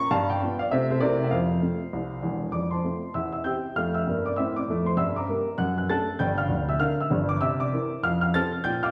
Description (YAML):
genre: jazz, stride piano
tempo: 196 BPM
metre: 4/4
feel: swing 62% on 8ths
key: F major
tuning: A4 = 436 Hz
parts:
  - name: warm upright piano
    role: solo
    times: 0.0-8.9 s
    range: D1 to A6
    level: -26 LUFS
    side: equal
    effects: none
room: wet recital hall reverb, RT60 1.4 s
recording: recorded in a church or concert hall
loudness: -26 LUFS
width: mono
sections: 0.0-2.5 A section; 2.5-8.9 A section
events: none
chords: 0.1 G7; 0.7 F/C; 1.0 C13; 1.3 F; 3.1 C/E; 3.8 F; 5.0 Gm; 5.6 D/F#; 6.2 Gm; 7.4 C7; 8.0 F